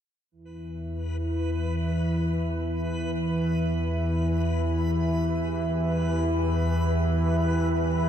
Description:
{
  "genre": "dark ambient drone",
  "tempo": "free time",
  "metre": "none",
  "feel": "none",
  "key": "E minor",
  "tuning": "A4 = 442 Hz",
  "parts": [
    { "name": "deep dark ambient pad", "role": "sustained chords", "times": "3.1-8.1 s", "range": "B3 to E5", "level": "-38 LUFS", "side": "equal", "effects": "chorus, built-in reverb" },
    { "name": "analog drone", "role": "drone", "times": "0.3-8.1 s", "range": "E2 to E3", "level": "-24 LUFS", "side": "equal", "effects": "chorus" },
    { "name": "backwards swelling texture", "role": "texture", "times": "0.5-8.1 s", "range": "B4", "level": "-35 LUFS", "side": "left 1 dB", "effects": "built-in reverb" }
  ],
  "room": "wet cathedral reverb, RT60 5.8 s",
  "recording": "dark, warm production",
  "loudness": "-24 LUFS",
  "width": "side -9 dB against mid",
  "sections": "0.3-8.1 A section",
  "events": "fade-in on ambient pad 0.3-8.1",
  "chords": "0.3 Em",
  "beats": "free time"
}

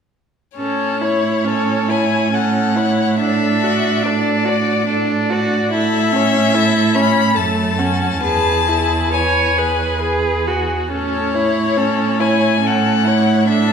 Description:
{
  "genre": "classical, slow romantic movement for string quartet",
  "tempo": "67-74 BPM",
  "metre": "3/4",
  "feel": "rubato",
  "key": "A major",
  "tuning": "A4 = 440 Hz",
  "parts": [
    { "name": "clear violin", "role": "melody", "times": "0.6-13.7 s", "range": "C#5 to B5", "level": "-20 LUFS", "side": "left 7 dB", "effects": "none" },
    { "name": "warm violin", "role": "second line", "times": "0.6-13.7 s", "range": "F#4 to D5", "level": "-22 LUFS", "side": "left 2 dB", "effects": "none" },
    { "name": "clear viola", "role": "accompaniment", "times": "0.6-13.7 s", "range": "A3 to C#5", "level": "-20 LUFS", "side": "right 2 dB", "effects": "none" },
    { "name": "rich cello", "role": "bass", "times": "0.6-13.7 s", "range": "E2 to A2", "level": "-19 LUFS", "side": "right 4 dB", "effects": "none" }
  ],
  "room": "wet recital hall reverb, RT60 1.6 s",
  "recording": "recorded in a church or concert hall",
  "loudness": "-14 LUFS",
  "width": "side -7 dB against mid",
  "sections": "0.6-13.7 A section",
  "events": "none",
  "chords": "0.6 A; 3.2 D/A; 5.7 A; 7.4 F#m; 8.2 E; 10.9 A",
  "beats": "| 0.58 1.47 2.34 | 3.21 4.06 4.89 | 5.71 6.54 7.36 | 8.23 9.12 10.01 | 10.90 11.77 12.62 | 13.47"
}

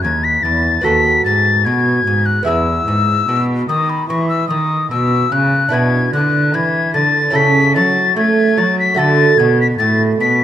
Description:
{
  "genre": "classical, baroque-style sonata movement with continuo",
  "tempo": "74 BPM",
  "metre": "4/4",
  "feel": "straight",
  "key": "E major, A major from 5.7 s",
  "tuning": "A4 = 440 Hz",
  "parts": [
    { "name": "mellow hollow soprano recorder", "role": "melody", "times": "0.0-10.4 s", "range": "B5 to B6", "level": "-15 LUFS", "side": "left 4 dB", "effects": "none" },
    { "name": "lute", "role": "accompaniment", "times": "0.0-10.4 s", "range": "D#2 to B4", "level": "-19 LUFS", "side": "right 4 dB", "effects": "none" },
    { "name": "rich cello", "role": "bass", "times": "0.0-10.4 s", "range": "D#2 to A3", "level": "-17 LUFS", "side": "right 1 dB", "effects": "none" }
  ],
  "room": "moderate recital hall reverb, RT60 1.8 s",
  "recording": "close, detailed microphones",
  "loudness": "-12 LUFS",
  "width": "side -11 dB against mid",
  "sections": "0.0-10.4 A section",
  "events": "none",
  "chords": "0.0 E; 0.8 B7/D#; 2.5 E; 5.7 E5/B; 7.3 A/C#; 9.0 D",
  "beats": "0.04 0.85 1.66 | 2.47 3.28 4.10 4.91 | 5.73 6.54 7.35 8.16 | 8.98 9.80"
}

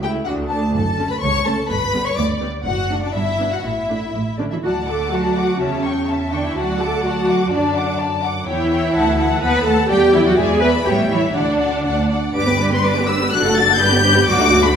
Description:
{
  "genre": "quick classical-period movement for string orchestra",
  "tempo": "125 BPM",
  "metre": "2/4",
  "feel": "straight",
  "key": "D major",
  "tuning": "A4 = 439 Hz",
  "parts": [
    { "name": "warm symphonic violin section", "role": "melody", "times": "0.0-14.8 s", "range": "C#5 to A6", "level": "-21 LUFS", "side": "left 4 dB", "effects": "none" },
    { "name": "warm symphonic violin section", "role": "second line", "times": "0.0-14.8 s", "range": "D4 to D6", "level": "-23 LUFS", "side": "left 4 dB", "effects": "none" },
    { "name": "warm symphonic viola section", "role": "accompaniment", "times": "0.0-14.8 s", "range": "F#3 to B4", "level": "-20 LUFS", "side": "right 1 dB", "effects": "none" },
    { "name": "clear symphonic double bass section", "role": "bass", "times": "0.0-14.8 s", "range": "F#1 to F#2", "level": "-24 LUFS", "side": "right 3 dB", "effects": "none" },
    { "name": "rich studio cello section", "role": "bass", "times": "0.0-14.7 s", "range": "C#2 to B4", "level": "-24 LUFS", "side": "right 3 dB", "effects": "none" }
  ],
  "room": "wet recital hall reverb, RT60 1.6 s",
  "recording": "recorded in a church or concert hall",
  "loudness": "-15 LUFS",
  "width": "side -7 dB against mid",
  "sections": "0.0-4.6 A section; 4.6-12.4 B section; 12.4-14.8 A section",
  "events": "none",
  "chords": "0.3 D5; 0.8 F#m; 1.7 G; 2.7 D/F#; 3.2 Em7/G; 3.6 Asus4; 4.1 A; 4.6 D; 5.6 A7/E; 6.6 D; 7.5 D/F#; 8.5 C#dim/E; 9.0 D; 9.4 B7/D#; 9.9 Em7; 10.4 E7; 10.9 A7; 11.4 D; 12.4 G; 13.3 D/F#; 13.8 G",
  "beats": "0.28 | 0.76 1.23 | 1.70 2.18 | 2.66 3.15 | 3.65 4.14 | 4.63 5.12 | 5.61 6.09 | 6.57 7.05 | 7.53 8.00 | 8.48 8.95 | 9.43 9.90 | 10.38 10.86 | 11.35 11.85 | 12.35 12.84 | 13.32 13.80 | 14.28 14.76"
}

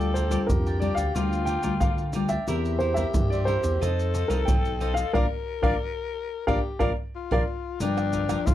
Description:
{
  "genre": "samba and choro",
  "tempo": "90 BPM",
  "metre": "4/4",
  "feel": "straight",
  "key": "Bb major",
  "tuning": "A4 = 441 Hz",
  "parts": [
    { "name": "warm grand piano", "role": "melody", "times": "0.0-7.4 s", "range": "Bb4 to G5", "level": "-28 LUFS", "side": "equal", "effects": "none" },
    { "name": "growling tenor saxophone", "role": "second line", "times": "0.0-8.5 s", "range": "D4 to Bb4", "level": "-32 LUFS", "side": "left 7 dB", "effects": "none" },
    { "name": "cavaquinho", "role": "accompaniment", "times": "0.0-8.4 s", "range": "D4 to G5", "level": "-36 LUFS", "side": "right 3 dB", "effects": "none" },
    { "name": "nylon-string guitar", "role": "accompaniment", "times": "0.0-8.5 s", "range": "G2 to C5", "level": "-32 LUFS", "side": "left 3 dB", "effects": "none" },
    { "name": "smooth synth bass", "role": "bass", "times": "0.0-8.5 s", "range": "G1 to G2", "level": "-28 LUFS", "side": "equal", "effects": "none" },
    { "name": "maracas, pandeiro, surdo and tamborim", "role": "percussion", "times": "0.0-8.5 s", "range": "none", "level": "-28 LUFS", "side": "right 1 dB", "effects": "none" }
  ],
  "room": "little or no reverb",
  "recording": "dry, close 1970s-style studio recording",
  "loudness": "-23 LUFS",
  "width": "side -12 dB against mid",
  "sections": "0.0-7.8 A section",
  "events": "band accent 5.1-7.8",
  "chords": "0.0 Bb6/D; 2.5 C7/E; 3.8 F7; 5.1 Bb; 7.8 Gm7",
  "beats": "0.48 1.15 1.82 | 2.48 3.15 3.82 4.48 | 5.15 5.81 6.48 7.14 | 7.81 8.47"
}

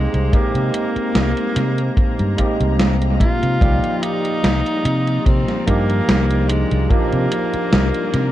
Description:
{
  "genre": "vaporwave",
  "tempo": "73 BPM",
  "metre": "4/4",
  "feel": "swing 54% on 16ths",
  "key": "C minor",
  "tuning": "A4 = 442 Hz",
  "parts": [
    { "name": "warm tenor saxophone", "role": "melody", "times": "0.0-8.3 s", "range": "Ab3 to F4", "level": "-24 LUFS", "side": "equal", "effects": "tape echo" },
    { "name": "overdriven tine electric piano", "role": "accompaniment", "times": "0.0-8.3 s", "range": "F3 to D5", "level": "-22 LUFS", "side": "equal", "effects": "lush chorus, analog delay" },
    { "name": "bright symphonic string section", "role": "sustained chords", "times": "0.0-8.3 s", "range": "Bb3 to Bb5", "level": "-33 LUFS", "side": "left 2 dB", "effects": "none" },
    { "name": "fingered electric bass", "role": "bass", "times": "0.0-8.3 s", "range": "C2 to C3", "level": "-19 LUFS", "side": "equal", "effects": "none" },
    { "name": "gated 80s digital drum machine", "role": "drums", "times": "0.1-8.3 s", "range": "hi-hat, snare drum", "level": "-21 LUFS", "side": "equal", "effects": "gated reverb, gated reverb snare, analog delay" },
    { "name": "kick drum", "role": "drums", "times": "0.3-7.1 s", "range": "none", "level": "-18 LUFS", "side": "equal", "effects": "none" }
  ],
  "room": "light reverb, studio reverb",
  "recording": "echo-heavy mix, cassette tape",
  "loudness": "-15 LUFS",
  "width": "side -13 dB against mid",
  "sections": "0.0-8.3 A section",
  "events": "none",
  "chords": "0.0 Abmaj9/C; 3.6 Cm11",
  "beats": "| 0.33 1.15 1.97 2.79 | 3.62 4.44 5.26 6.08 | 6.90 7.73"
}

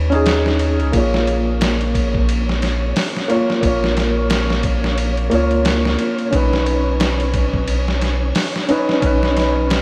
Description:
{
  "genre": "trip hop",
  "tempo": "89 BPM",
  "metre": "4/4",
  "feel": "swing 58% on 16ths",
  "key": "Bb phrygian",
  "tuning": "A4 = 440 Hz",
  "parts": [
    { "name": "felt-muted upright piano", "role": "accompaniment", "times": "0.0-9.8 s", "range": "Bb3 to Db5", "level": "-21 LUFS", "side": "equal", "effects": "harmonic tremolo, tape echo" },
    { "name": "soft dub sub bass", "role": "bass", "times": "0.0-9.8 s", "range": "Bb1 to D#2", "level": "-22 LUFS", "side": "equal", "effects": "none" },
    { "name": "trip hop sampler-style drum kit", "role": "drums", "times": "0.1-9.8 s", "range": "hi-hat, kick drum, ride cymbal, snare drum", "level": "-23 LUFS", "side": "equal", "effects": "none" },
    { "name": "flickering grainy texture", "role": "texture", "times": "2.0-9.8 s", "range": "Db4 to Db5", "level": "-32 LUFS", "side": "equal", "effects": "none" }
  ],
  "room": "moderate huge ambient reverb, RT60 4.0 s",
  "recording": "dreamy mix soaked in reverb",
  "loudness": "-18 LUFS",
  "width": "mono",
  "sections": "0.0-9.8 A section",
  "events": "none",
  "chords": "0.0 Badd9; 0.9 Bbm; 6.3 Badd9",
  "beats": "0.26 | 0.94 1.61 2.29 2.96 | 3.63 4.31 4.98 5.66 | 6.33 7.00 7.68 8.35 | 9.03 9.70"
}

